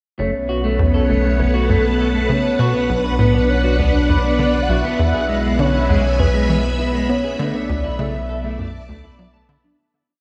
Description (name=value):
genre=ambient, sequencer-driven space music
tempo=100 BPM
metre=4/4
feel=straight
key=unclear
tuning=A4 = 439 Hz
part: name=soft octave-layered synth lead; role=melody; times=0.2-9.2 s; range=A4 to F#5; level=-25 LUFS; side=equal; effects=chorus, phaser, analog delay
part: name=string machine, full ensemble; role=sustained chords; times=0.2-9.8 s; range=B3 to B5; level=-25 LUFS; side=equal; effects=ensemble chorus
part: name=electric guitar through a small old amp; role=arpeggios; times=0.2-9.8 s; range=G#3 to A5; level=-26 LUFS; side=equal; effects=analog delay
part: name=tight sequencer bass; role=riff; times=0.2-9.6 s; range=F#1 to B3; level=-24 LUFS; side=equal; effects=subtle chorus, analog delay
part: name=warm sub bass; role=bass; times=0.2-9.8 s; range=B1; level=-23 LUFS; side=equal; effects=none
room=wet echo chamber reverb, RT60 2.5 s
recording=echo-heavy mix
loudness=-18 LUFS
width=mono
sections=0.2-9.8 A section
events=fade-out 6.6-9.8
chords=0.2 F#m; 2.6 Bm; 5.0 E/B; 7.4 Dsus2/B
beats=| 0.19 0.79 1.39 1.99 | 2.59 3.19 3.79 4.39 | 4.99 5.59 6.19 6.79 | 7.39 7.99 8.59 9.19